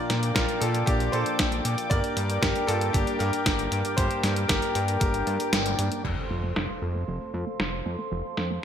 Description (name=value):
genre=italo disco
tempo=116 BPM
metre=4/4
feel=straight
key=F major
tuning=A4 = 441 Hz
part: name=bright grand piano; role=melody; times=0.0-5.5 s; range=D4 to D5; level=-30 LUFS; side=equal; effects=ping-pong delay
part: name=warm analog pad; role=sustained chords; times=0.0-8.6 s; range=Bb3 to D6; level=-32 LUFS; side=equal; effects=chorus
part: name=mellow synth brass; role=stabs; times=0.0-8.6 s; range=G2 to A4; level=-34 LUFS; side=left 2 dB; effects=chorus, ping-pong delay
part: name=fat analog bass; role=bass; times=0.1-8.6 s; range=F1 to Bb2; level=-30 LUFS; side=equal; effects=tube saturation
part: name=detuned 8-bit digital drum machine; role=drums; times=0.1-8.5 s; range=crash cymbal, hi-hat, snare drum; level=-29 LUFS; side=equal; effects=low-pass filter on snare, studio reverb, low-pass filter on hats, low-pass filter on cymbals, gated reverb
part: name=electronic kick drum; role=drums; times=0.4-5.1 s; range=none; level=-28 LUFS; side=equal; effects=studio reverb
part: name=analog pluck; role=arpeggios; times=6.0-8.6 s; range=F3 to A3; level=-38 LUFS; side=right 3 dB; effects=chorus, cassette tape, ping-pong delay
part: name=impact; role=sound effects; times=6.0-8.1 s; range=none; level=-37 LUFS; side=equal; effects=none
room=moderate plate reverb, RT60 2.0 s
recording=bright 1980s-style digital production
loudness=-24 LUFS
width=side -8 dB against mid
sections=0.0-6.0 A section; 6.0-8.6 B section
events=kick drops out 5.5-6.0; band accent 5.5; impact 6.0-8.1; filter sweep on synth arpeggio sound 6.0-8.6; filter sweep on analog synth pad 6.0-8.6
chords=0.0 Bb; 1.9 Gm; 6.0 F